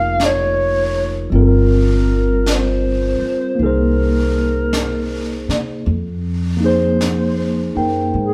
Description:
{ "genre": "jazz ballad", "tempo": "53 BPM", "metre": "4/4", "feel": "swing 66% on 8ths", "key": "F minor", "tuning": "A4 = 440 Hz", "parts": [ { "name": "breathy clarinet", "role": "melody", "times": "0.0-8.3 s", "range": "Ab4 to F5", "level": "-23 LUFS", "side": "equal", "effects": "none" }, { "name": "tine electric piano", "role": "accompaniment", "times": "0.0-8.3 s", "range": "G3 to G5", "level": "-22 LUFS", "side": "equal", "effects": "none" }, { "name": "upright bass", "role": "bass", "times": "0.0-8.3 s", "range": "F1 to C3", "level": "-21 LUFS", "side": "equal", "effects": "none" }, { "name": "jazz brush drum kit", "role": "drums", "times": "0.2-8.3 s", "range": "brushed snare drum, hi-hat, snare drum", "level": "-28 LUFS", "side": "equal", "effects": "none" } ], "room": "light reverb", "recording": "band playing live in one room", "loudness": "-17 LUFS", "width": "mono", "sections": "0.0-8.3 A section", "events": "none", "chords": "0.0 Bbm7; 1.3 Fsus24/G; 3.6 Abadd9/C; 5.9 Fm11" }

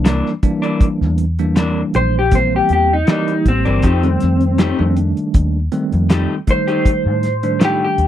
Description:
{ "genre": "straight-eighth soul blues", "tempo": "80 BPM", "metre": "4/4", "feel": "swing 54% on 16ths", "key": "unclear", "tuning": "A4 = 438 Hz", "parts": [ { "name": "bell-like tine electric piano", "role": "accompaniment", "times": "0.0-8.1 s", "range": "Eb3 to G4", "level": "-20 LUFS", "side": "right 2 dB", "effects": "fast stereo tremolo" }, { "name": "electric guitar through a small old amp", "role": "stabs", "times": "0.0-7.8 s", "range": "C3 to G4", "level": "-22 LUFS", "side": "left 4 dB", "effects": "none" }, { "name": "vintage muted fingered electric bass", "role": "bass", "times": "0.0-8.1 s", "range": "G1 to A2", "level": "-18 LUFS", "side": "equal", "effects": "none" }, { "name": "cloth-damped thuddy drum kit", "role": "drums", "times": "0.1-8.1 s", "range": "hi-hat, kick drum, snare drum", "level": "-15 LUFS", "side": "equal", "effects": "none" }, { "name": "electric guitar through a small old amp", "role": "melody", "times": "2.0-8.1 s", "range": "C4 to C5", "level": "-17 LUFS", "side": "left 2 dB", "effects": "wide subtle chorus" } ], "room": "little or no reverb", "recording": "dry, close 1970s-style studio recording", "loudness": "-13 LUFS", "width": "side -11 dB against mid", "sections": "0.0-8.1 A section", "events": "clean electric guitar solo 0.0-8.1", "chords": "0.0 C9; 3.8 F9" }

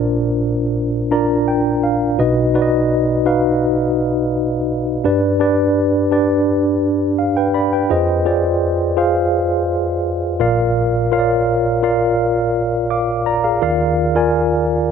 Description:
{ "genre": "pop", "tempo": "84 BPM", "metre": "4/4", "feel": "straight", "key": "unclear", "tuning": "A4 = 440 Hz", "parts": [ { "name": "mellow tine electric piano", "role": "solo", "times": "0.0-14.9 s", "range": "Bb1 to D6", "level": "-14 LUFS", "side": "equal", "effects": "medium stereo tremolo" } ], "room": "moderate lush hall reverb, RT60 2.6 s", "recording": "none", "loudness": "-14 LUFS", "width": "side -6 dB against mid", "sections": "0.0-2.2 A section; 2.2-13.6 B section; 13.6-14.9 C section", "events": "tine electric piano fill 0.8-2.2", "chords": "0.0 Bbadd9; 2.2 B; 5.0 G; 7.9 Fm7; 10.4 Bb; 13.6 Bb/Eb" }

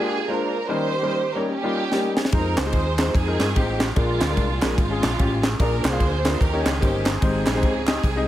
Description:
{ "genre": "uptempo gospel", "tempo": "147 BPM", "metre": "4/4", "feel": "swing 61% on 8ths", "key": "unclear", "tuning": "A4 = 440 Hz", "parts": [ { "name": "dark studio string section", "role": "melody", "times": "0.0-8.3 s", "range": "Ab3 to C5", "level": "-26 LUFS", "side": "right 3 dB", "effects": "none" }, { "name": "warm grand piano", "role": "accompaniment", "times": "0.0-8.3 s", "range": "Ab2 to F5", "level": "-26 LUFS", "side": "left 2 dB", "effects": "none" }, { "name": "tight funk drum kit", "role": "drums", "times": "1.9-8.2 s", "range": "kick drum, ride cymbal, snare drum", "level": "-23 LUFS", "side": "equal", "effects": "none" }, { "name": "fingered electric bass", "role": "bass", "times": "2.3-8.2 s", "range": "G1 to G2", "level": "-26 LUFS", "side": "equal", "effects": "none" }, { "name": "group handclap", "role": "percussion", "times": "2.6-8.0 s", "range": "none", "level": "-32 LUFS", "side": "right 2 dB", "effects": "none" } ], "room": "light reverb, small room ambience", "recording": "none", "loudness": "-19 LUFS", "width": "side -13 dB against mid", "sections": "0.0-8.3 A section", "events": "drum fill 1.9-2.3", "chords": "0.0 Bb7; 0.7 Eb7; 2.3 Fm7; 4.0 Bb7; 4.8 Db/Ab; 5.6 Bb7; 6.4 Eb7; 7.2 Abmaj7" }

